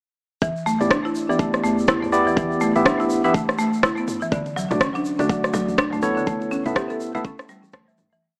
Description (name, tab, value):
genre	afro house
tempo	123 BPM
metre	4/4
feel	swing 59% on 16ths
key	E dorian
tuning	A4 = 442 Hz
part	buzzing marimba with medium mallets	arpeggios	0.4-8.2 s	D3 to A4	-27 LUFS	equal	sidechain pumping, tape echo
part	warm sub bass	bass	0.4-8.2 s	E1 to E2	-38 LUFS	equal	sidechain pumping
part	electronic kick drum	drums	0.4-7.8 s	none	-26 LUFS	equal	studio reverb
part	egg shaker	percussion	0.4-8.2 s	none	-44 LUFS	equal	none
part	bright tine electric piano	stabs	0.8-7.2 s	A3 to E5	-24 LUFS	equal	vintage 12-bit sampler grit, sidechain pumping, tape echo
part	deep house drum kit	drums	0.8-8.1 s	rim click, toms	-25 LUFS	equal	studio reverb
part	congas	percussion	4.3-8.1 s	none	-33 LUFS	equal	none
room	light reverb, small room reverb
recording	small speaker sound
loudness	-21 LUFS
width	mono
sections	0.4-8.2 drop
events	drop 0.4-8.2; fade-out 5.6-8.2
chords	0.4 Em7; 4.3 D; 6.3 Aadd9